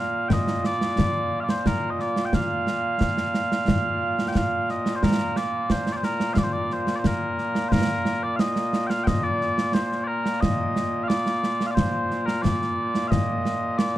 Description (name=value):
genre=scottish traditional, Scottish pipe music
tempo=89 BPM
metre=2/4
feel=straight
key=Bb major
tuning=A4 = 439 Hz
part: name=mellow small bagpipes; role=melody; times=0.0-14.0 s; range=Bb2 to G5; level=-24 LUFS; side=equal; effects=none
part: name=concert snare drum and concert bass drum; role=drums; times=0.3-13.9 s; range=none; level=-25 LUFS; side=right 1 dB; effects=none
room=little or no reverb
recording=dark, warm production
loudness=-22 LUFS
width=side -14 dB against mid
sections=0.0-7.7 A section; 7.7-14.0 B section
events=none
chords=none